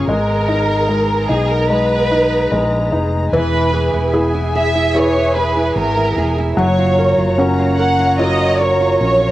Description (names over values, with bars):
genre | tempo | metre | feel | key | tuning
pop | 74 BPM | 4/4 | straight | unclear | A4 = 438 Hz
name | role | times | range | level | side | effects
rich studio violin section | melody | 0.0-9.3 s | G#4 to F#5 | -17 LUFS | right 1 dB | cassette tape
clear baby grand piano | accompaniment | 0.0-9.3 s | E3 to B4 | -18 LUFS | left 2 dB | cassette tape
rich studio string section | sustained chords | 0.0-9.3 s | F#3 to A#5 | -26 LUFS | left 1 dB | cassette tape
mellow fretless electric bass | bass | 0.0-9.3 s | E1 to B1 | -20 LUFS | equal | none
flamenco guitar | arpeggios | 3.3-9.3 s | E3 to A#4 | -20 LUFS | right 4 dB | cassette tape
room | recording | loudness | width
moderate spring reverb, RT60 1.0 s | home recording on cassette | -13 LUFS | side -15 dB against mid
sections
0.0-3.3 A section; 3.3-9.3 B section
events
none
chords
0.1 G#madd9; 3.3 E; 6.6 F#maj7